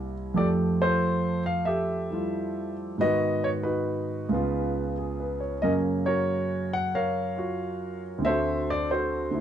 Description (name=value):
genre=solo jazz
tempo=91 BPM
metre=4/4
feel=swing 69% on 8ths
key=unclear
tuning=A4 = 440 Hz
part: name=warm concert grand piano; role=solo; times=0.0-9.4 s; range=C2 to Gb5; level=-25 LUFS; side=right 1 dB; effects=none
room=light reverb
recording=nothing above 10.8 kHz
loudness=-25 LUFS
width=side -9 dB against mid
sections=0.3-9.4 A section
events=none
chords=0.3 Fmaj9; 3.0 Abm7; 4.3 Db7; 5.6 Gbmaj7; 8.2 D7